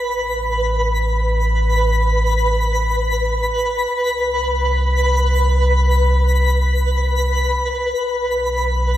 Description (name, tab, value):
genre	ambient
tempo	free time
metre	none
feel	none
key	unclear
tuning	A4 = 439 Hz
part	warm sub bass	bass	0.0-9.0 s	A1 to C2	-18 LUFS	equal	none
part	twinkling granular texture	texture	0.0-9.0 s	B4 to B5	-19 LUFS	equal	built-in reverb, shimmer reverb
room	wet huge ambient reverb, RT60 9.0 s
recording	none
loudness	-16 LUFS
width	side -12 dB against mid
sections	0.0-9.0 A section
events	none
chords	0.0 Asus2; 3.9 N.C.